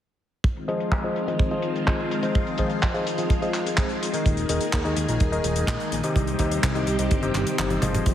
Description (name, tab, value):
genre	italo disco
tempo	126 BPM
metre	4/4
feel	straight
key	F minor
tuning	A4 = 440 Hz
part	phased string machine	sustained chords	0.6-8.1 s	Eb3 to Ab4	-28 LUFS	equal	ensemble chorus, phaser
part	damped 70s drum kit	drums	0.4-8.1 s	handclaps, hi-hat, toms	-30 LUFS	equal	low-pass filter on hats, studio reverb, low-pass filter on toms, low-pass filter on snare, low-pass filter on room
part	kick drum	drums	0.4-8.1 s	none	-23 LUFS	right 1 dB	studio reverb
part	warm electric grand piano	stabs	0.7-8.1 s	C3 to Eb5	-27 LUFS	left 3 dB	low-pass filter
part	chorused synth bass	bass	4.3-8.1 s	Eb1 to Eb2	-27 LUFS	equal	none
room	moderate plate reverb, RT60 1.8 s, small room ambience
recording	heavily compressed radio sound, multiband compression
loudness	-22 LUFS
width	side -11 dB against mid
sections	0.4-8.1 A section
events	kick drops out 7.6-8.1; drum fill 7.6-8.1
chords	0.4 Fm7; 4.3 Ebsus4; 6.2 Cm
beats	| 0.44 0.92 1.40 1.87 | 2.35 2.82 3.30 3.78 | 4.25 4.73 5.21 5.68 | 6.16 6.63 7.11 7.59 | 8.06